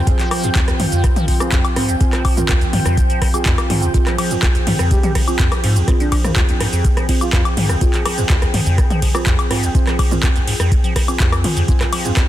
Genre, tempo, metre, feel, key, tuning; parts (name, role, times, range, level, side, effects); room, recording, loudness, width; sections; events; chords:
acid house; 124 BPM; 4/4; straight; A4 = 440 Hz
warm analog pad; sustained chords; 0.0-12.3 s; F3 to Ab4; -26 LUFS; equal; chorus, sidechain pumping
granular cloud pad; texture; 0.0-12.3 s; G5; -28 LUFS; equal; built-in reverb, sidechain pumping
liquid acid bass; riff; 0.1-12.2 s; Eb2 to F3; -21 LUFS; equal; phaser, tube saturation, cassette tape, sidechain pumping
deep mellow chord stab; stabs; 0.1-12.2 s; C4 to Bb4; -26 LUFS; right 4 dB; lush chorus, cassette tape, tape echo
electro analog drum machine; drums; 0.1-12.3 s; handclaps, hi-hat, ride cymbal, rim click, shaker, toms, woodblock; -21 LUFS; left 1 dB; overdrive
electronic kick drum; drums; 0.1-12.3 s; -16 LUFS; equal; overdrive
breathy flute-like synth lead; melody; 4.9-7.4 s; D4 to G4; -28 LUFS; right 1 dB; chorus, ping-pong delay
little or no reverb; dense, heavily limited modern master; -14 LUFS; side -13 dB against mid
0.0-12.3 A section
0.0 Fm